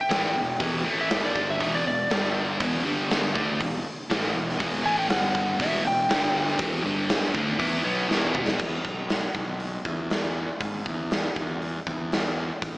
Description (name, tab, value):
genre	classic rock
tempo	120 BPM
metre	4/4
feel	straight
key	unclear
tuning	A4 = 441 Hz
part	electric slide guitar	melody	0.0-6.6 s	D5 to G#5	-27 LUFS	equal	none
part	sludgy distorted guitar	riff	0.1-8.6 s	E2 to E4	-27 LUFS	equal	overdrive
part	fuzz fingered electric bass	bass	0.1-12.8 s	E1 to G#2	-32 LUFS	equal	overdrive
part	big rock drum kit	drums	0.1-12.7 s	crash cymbal, hi-hat, kick drum, snare drum, toms	-27 LUFS	equal	none
room	moderate lush hall reverb, RT60 1.7 s, studio reverb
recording	big arena sound, small speaker sound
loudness	-23 LUFS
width	side -23 dB against mid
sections	0.0-8.6 A section; 8.6-12.8 B section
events	electric slide guitar solo 0.0-8.6; drum fill 8.1-8.6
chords	0.0 E5; 1.1 G5; 1.6 E5; 2.1 G5; 2.6 E5; 2.9 G5; 3.4 E5; 5.1 G5; 5.6 E5; 6.1 G5; 6.6 E5; 6.8 G5; 7.3 E5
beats	0.11 | 0.61 1.11 1.61 2.11 | 2.61 3.10 3.60 4.10 | 4.60 5.10 5.60 6.10 | 6.60 7.10 7.60 8.10 | 8.60 9.10 9.61 10.11 | 10.62 11.12 11.62 12.13 | 12.63